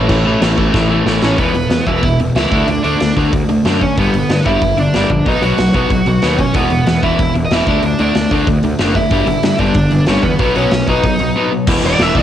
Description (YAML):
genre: punk rock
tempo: 186 BPM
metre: 4/4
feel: straight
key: unclear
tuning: A4 = 440 Hz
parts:
  - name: crunchy overdriven guitar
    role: riff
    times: 0.0-12.2 s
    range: E2 to D4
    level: -19 LUFS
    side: right 6 dB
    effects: cassette tape
  - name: overdriven electric guitar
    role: riff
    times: 0.0-12.2 s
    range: E2 to D4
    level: -17 LUFS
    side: left 7 dB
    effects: cassette tape
  - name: fuzz picked electric bass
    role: bass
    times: 0.0-12.2 s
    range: E1 to G2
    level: -18 LUFS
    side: equal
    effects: overdrive
  - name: big rock drum kit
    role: drums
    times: 0.1-12.2 s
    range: crash cymbal, hi-hat, kick drum, snare drum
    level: -18 LUFS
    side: equal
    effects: cassette tape
  - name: dark smooth lead guitar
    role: melody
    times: 1.2-12.2 s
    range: B3 to F#5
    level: -18 LUFS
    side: right 2 dB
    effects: overdrive
room: light reverb, studio ambience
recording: home recording on cassette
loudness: -11 LUFS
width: side -10 dB against mid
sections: 0.0-1.4 A section; 1.4-11.7 B section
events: drum fill 0.7-1.4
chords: 0.0 A; 1.4 E5; 2.5 D; 4.0 G; 5.3 B; 6.6 E5; 7.7 D; 9.1 G; 10.4 B; 11.7 E5